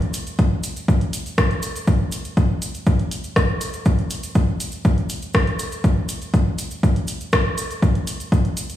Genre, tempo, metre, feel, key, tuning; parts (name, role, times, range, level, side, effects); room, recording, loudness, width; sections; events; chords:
techno; 121 BPM; 4/4; straight
punchy analog drum machine; drums; 0.0-8.8 s; hi-hat, rim click; -27 LUFS; left 1 dB; dub echo
cabasa; percussion; 0.1-8.8 s; -34 LUFS; right 3 dB
electronic kick drum; drums; 0.4-8.4 s; -18 LUFS; equal
light reverb; played on a big sound system in a bare room, stone room reverb, studio reverb; -18 LUFS; side -12 dB against mid
0.0-8.8 A section